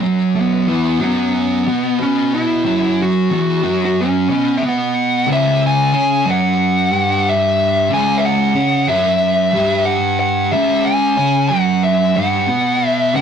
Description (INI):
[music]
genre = metal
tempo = 92 BPM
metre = 4/4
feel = straight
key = C# minor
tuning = A4 = 440 Hz
[part]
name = thick fuzz guitar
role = riff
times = 0.0-13.2 s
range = C#2 to C#4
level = -16 LUFS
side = equal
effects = distortion
[part]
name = fuzz lead guitar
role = melody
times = 0.4-13.2 s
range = B3 to G#5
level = -16 LUFS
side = equal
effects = distortion
[sound]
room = wet studio reverb, RT60 0.6 s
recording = rough rehearsal-room recording, warm saturation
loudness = -13 LUFS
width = side -7 dB against mid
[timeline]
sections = 0.0-5.3 A section; 5.3-13.2 B section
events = none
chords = 0.0 F#5; 5.3 C#m